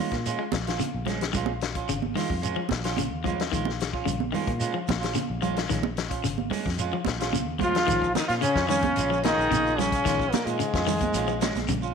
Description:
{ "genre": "afrobeat", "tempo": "110 BPM", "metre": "4/4", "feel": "straight", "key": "Bb minor", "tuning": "A4 = 445 Hz", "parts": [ { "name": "electric guitar at the edge of break-up", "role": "arpeggios", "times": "0.0-11.9 s", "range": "Db3 to Ab3", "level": "-33 LUFS", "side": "left 11 dB", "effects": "spring reverb" }, { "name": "electric guitar at the edge of break-up", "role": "stabs", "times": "0.0-11.9 s", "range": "Ab3 to F4", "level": "-32 LUFS", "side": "right 8 dB", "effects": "none" }, { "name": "fingered electric bass", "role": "bass", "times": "0.1-11.9 s", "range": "Ab1 to Bb2", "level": "-32 LUFS", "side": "equal", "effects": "none" }, { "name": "vintage drum kit", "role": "drums", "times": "0.1-11.8 s", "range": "hi-hat, kick drum, snare drum", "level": "-31 LUFS", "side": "left 6 dB", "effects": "none" }, { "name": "congas", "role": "percussion", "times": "0.3-11.8 s", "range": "none", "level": "-31 LUFS", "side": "right 10 dB", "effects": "none" }, { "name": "shekere", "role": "percussion", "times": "0.3-11.9 s", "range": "none", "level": "-35 LUFS", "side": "right 5 dB", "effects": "none" }, { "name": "bright trombone", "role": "melody", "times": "7.6-11.7 s", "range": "Ab3 to F4", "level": "-26 LUFS", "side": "left 1 dB", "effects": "none" }, { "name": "brilliant trombone section", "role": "second line", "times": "7.6-11.7 s", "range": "Ab2 to F3", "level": "-34 LUFS", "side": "left 10 dB", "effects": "none" }, { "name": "edgy alto saxophone", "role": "second line", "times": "7.6-11.7 s", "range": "Ab3 to Ab4", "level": "-33 LUFS", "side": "right 8 dB", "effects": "none" } ], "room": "moderate echo chamber reverb, RT60 1.2 s, small room ambience", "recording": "1960s-style stereo with parts hard left and right", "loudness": "-24 LUFS", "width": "side -6 dB against mid", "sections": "0.0-7.9 A section; 7.9-11.9 B section", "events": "none", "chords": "0.0 Bbm7" }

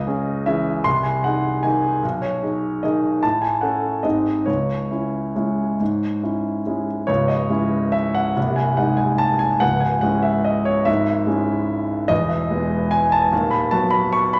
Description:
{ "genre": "classical, piano waltz", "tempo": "131-161 BPM", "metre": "3/4", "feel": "rubato", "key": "C# minor", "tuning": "A4 = 440 Hz", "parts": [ { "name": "clear grand piano", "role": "solo", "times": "0.0-14.4 s", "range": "B#0 to C#6", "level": "-20 LUFS", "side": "equal", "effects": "none" } ], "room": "wet recital hall reverb, RT60 1.4 s", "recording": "none", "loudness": "-20 LUFS", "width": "mono", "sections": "0.0-7.1 A section; 7.1-14.4 B section", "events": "none", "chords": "0.0 C#m; 0.9 G#/B#; 2.0 G#m/B; 3.2 F#m/A; 4.0 G#; 4.5 C#m; 8.4 G#/B#; 9.6 C#m; 12.1 E; 13.3 B/D#" }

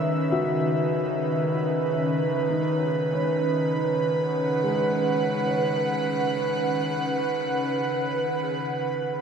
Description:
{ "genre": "ambient", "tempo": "free time", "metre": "none", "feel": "none", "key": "unclear", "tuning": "A4 = 440 Hz", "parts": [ { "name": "airy breathy pad", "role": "sustained chords", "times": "0.0-9.2 s", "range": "C#3 to F#5", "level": "-23 LUFS", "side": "right 1 dB", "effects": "chorus, shimmer reverb" }, { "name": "felt-muted upright piano", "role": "arpeggios", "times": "0.0-9.0 s", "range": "G#3 to E6", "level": "-33 LUFS", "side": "left 2 dB", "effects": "diffuse ambient delay, shimmer reverb" } ], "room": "wet cathedral reverb, RT60 7.5 s", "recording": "none", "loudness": "-22 LUFS", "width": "side -6 dB against mid", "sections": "0.0-9.0 A section", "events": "fade-out on felt piano 0.0-9.0", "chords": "0.0 C#m9; 2.4 Badd9/C#" }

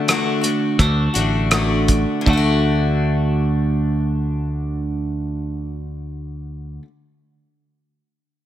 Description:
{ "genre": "folk rock and heartland rock", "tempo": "79-86 BPM", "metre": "4/4", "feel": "straight", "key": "D major", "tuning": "A4 = 440 Hz", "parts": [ { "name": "picked steel-string acoustic guitar", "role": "accompaniment", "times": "0.0-6.9 s", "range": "D3 to F#4", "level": "-24 LUFS", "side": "left 6 dB", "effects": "none" }, { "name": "twelve-string electric guitar", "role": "riff", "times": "0.0-6.8 s", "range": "D3 to F#4", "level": "-23 LUFS", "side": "right 2 dB", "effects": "phaser" }, { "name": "cloth-damped thuddy drum kit", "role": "drums", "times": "0.1-2.4 s", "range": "hi-hat, kick drum, rim click", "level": "-19 LUFS", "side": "right 1 dB", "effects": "none" }, { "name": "fingered electric bass", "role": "bass", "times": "0.8-6.8 s", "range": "A1 to D2", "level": "-21 LUFS", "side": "right 1 dB", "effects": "none" } ], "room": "light reverb, small room ambience", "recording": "none", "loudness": "-17 LUFS", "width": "side -12 dB against mid", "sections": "0.0-2.3 A section; 2.3-5.3 B section", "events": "slowing down 0.0-2.3", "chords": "0.0 D" }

